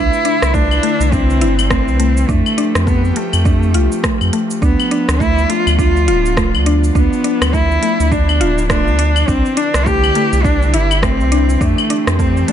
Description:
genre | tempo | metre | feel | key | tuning
organic downtempo | 103 BPM | 4/4 | swing 59% on 16ths | D dorian | A4 = 441 Hz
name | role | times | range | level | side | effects
warm cello | melody | 0.0-12.5 s | A3 to G4 | -18 LUFS | equal | ping-pong delay
airy breathy pad | sustained chords | 0.0-12.5 s | D3 to B4 | -24 LUFS | left 1 dB | chorus, sidechain pumping
mallet-like synth pluck | arpeggios | 0.0-12.5 s | A3 to F4 | -20 LUFS | left 2 dB | chorus, tape echo
warm sub bass | bass | 0.0-12.4 s | D1 to F2 | -15 LUFS | equal | none
bronze singing bowl | texture | 0.0-12.5 s | A3 to B4 | -37 LUFS | right 6 dB | none
organic electronic drum kit | drums | 0.1-12.5 s | claves, hi-hat, rim click, shaker | -21 LUFS | left 1 dB | none
electronic kick drum | drums | 0.5-12.3 s | none | -18 LUFS | equal | overdrive
room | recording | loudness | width
little or no reverb | nothing above 11.0 kHz | -12 LUFS | side -9 dB against mid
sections
0.0-12.5 A section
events
none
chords
0.0 Cmaj9; 2.3 Fadd9; 4.6 Dm6; 9.3 Cmaj9; 11.6 Fmaj9

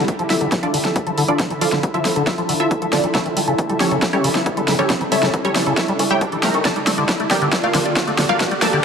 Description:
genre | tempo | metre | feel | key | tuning
uplifting trance | 137 BPM | 4/4 | straight | D harmonic minor | A4 = 440 Hz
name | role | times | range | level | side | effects
wide unison pluck | melody | 0.0-8.8 s | C#4 to Bb5 | -21 LUFS | right 1 dB | phaser, sidechain pumping, dub echo
liquid acid bass | arpeggios | 0.0-8.8 s | C#3 to C#4 | -23 LUFS | left 2 dB | analog chorus, sidechain pumping, dub echo
riser | sound effects | 0.0-8.8 s | none | -29 LUFS | equal | none
big-room dance drum kit | drums | 0.1-8.8 s | hi-hat, snare drum | -21 LUFS | equal | overdrive, high-pass filter on snare, high-pass filter on hats
electronic kick drum | drums | 0.1-8.5 s | none | -24 LUFS | equal | high-pass filter on kick
room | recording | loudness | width
moderate scoring stage reverb, RT60 1.9 s | none | -16 LUFS | side -6 dB against mid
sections
0.0-8.8 A section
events
build-up 0.0-8.8; drum fill 0.0-8.8; filter sweep on synth pluck 0.0-8.8; filter sweep on acid bass 0.0-8.8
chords
0.0 Dmadd9; 3.1 A7; 6.7 Gmadd9

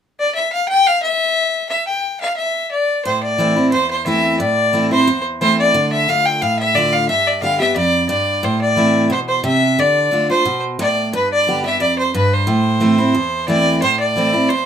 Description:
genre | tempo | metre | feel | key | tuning
bluegrass | 178 BPM | 4/4 | straight | A minor | A4 = 441 Hz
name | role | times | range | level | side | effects
clear fiddle | melody | 0.2-14.7 s | B4 to G5+20c | -16 LUFS | left 1 dB | none
picked steel-string acoustic guitar | accompaniment | 3.1-14.7 s | E2 to G4 | -18 LUFS | right 1 dB | none
room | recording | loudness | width
light reverb | close, detailed microphones | -14 LUFS | side -8 dB against mid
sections
0.4-3.1 A section; 3.1-13.8 B section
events
none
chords
0.0 N.C.; 3.1 Am; 5.7 Dm; 7.1 G; 8.4 Am; 9.8 Dm; 11.1 G; 12.5 Am

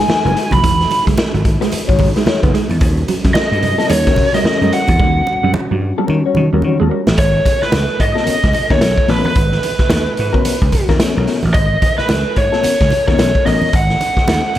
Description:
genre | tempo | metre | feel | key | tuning
funk | 110 BPM | 4/4 | swing 60% on 16ths | unclear | A4 = 440 Hz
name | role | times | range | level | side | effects
lead guitar through a small cranked amp | melody | 0.0-14.6 s | B4 to B5 | -17 LUFS | right 1 dB | overdrive
mellow electric guitar | accompaniment | 0.0-13.7 s | G3 to C#5 | -20 LUFS | left 7 dB | warbly pitch drift
mellow tonewheel organ | sustained chords | 0.0-7.1 s | G3 to F#4 | -25 LUFS | left 1 dB | fast rotary speaker, chorus vibrato
mellow electric guitar | riff | 0.0-7.0 s | E3 to B3 | -22 LUFS | right 8 dB | none
raw garage drum kit | drums | 0.0-14.6 s | hi-hat, kick drum, snare drum | -16 LUFS | equal | none
vintage slap bass | bass | 0.1-14.6 s | E1 to D#3 | -17 LUFS | equal | none
congas | percussion | 0.1-14.4 s | none | -25 LUFS | right 4 dB | none
room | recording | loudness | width
little or no reverb | none | -12 LUFS | side -12 dB against mid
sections
0.0-7.2 A section; 7.2-14.6 B section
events
drum fill 5.0-7.2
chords
0.0 Emaj9; 2.8 D#7#9; 7.2 G#m11

